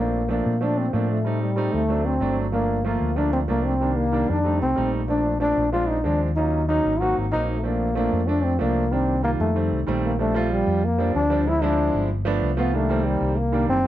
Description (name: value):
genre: Afro-Cuban jazz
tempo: 188 BPM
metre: 4/4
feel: straight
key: Bb major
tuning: A4 = 441 Hz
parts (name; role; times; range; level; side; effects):
- mellow trombone; melody; 0.0-13.9 s; G3 to Gb4; -23 LUFS; left 1 dB; none
- clear concert grand piano; accompaniment; 0.0-13.9 s; Eb3 to F4; -26 LUFS; right 3 dB; none
- fingered electric bass; bass; 0.0-13.9 s; Gb1 to Bb2; -25 LUFS; left 1 dB; none
room: little or no reverb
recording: dark, warm production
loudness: -20 LUFS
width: side -13 dB against mid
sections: 0.0-10.2 A section; 10.2-13.9 B section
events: none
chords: 0.0 Bbmaj7; 1.3 Am7b5; 1.9 D7; 2.5 Gm9; 3.8 Cm7; 4.5 F7; 5.1 Bbmaj7; 5.7 Bb7; 6.4 Ebm7; 7.0 Ab9; 7.6 Bbmaj7; 8.9 Cm7; 9.6 F7; 10.2 Bb6; 11.5 Dm7b5; 12.1 G7; 12.7 Cm7